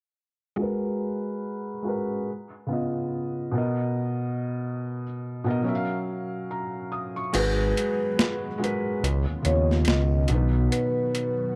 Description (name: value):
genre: lo-fi hip hop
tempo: 71 BPM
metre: 4/4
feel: swing 59% on 16ths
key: G# dorian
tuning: A4 = 439 Hz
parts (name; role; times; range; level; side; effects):
- felt-muted upright piano; accompaniment; 0.6-11.6 s; B2 to D#6; -30 LUFS; equal; cassette tape, low-pass filter
- vibraphone with soft mallets; melody; 7.3-11.6 s; B4 to D#5; -31 LUFS; equal; none
- string machine, cellos; sustained chords; 7.3-11.6 s; D#3 to F#4; -38 LUFS; equal; phaser, ensemble chorus
- smooth gliding synth bass; bass; 7.3-10.7 s; G#1 to D#2; -26 LUFS; equal; none
- boom bap sampler-style drum kit; drums; 7.3-11.4 s; crash cymbal, hi-hat, snare drum; -30 LUFS; equal; overdrive
room: light reverb, digital ambience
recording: none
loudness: -27 LUFS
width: mono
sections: 0.6-7.3 A section; 7.3-11.6 B section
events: filter sweep on felt piano 0.6-7.3; kick muted 7.3-11.6; break 10.7-11.6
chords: 0.6 G#m9; 2.3 C#9; 3.5 Bmaj7; 5.7 F#maj7; 7.3 G#m9; 9.0 C#9; 10.3 B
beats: | 0.58 1.43 2.27 3.12 | 3.96 4.80 5.65 6.50 | 7.34 8.19 9.03 9.88 | 10.72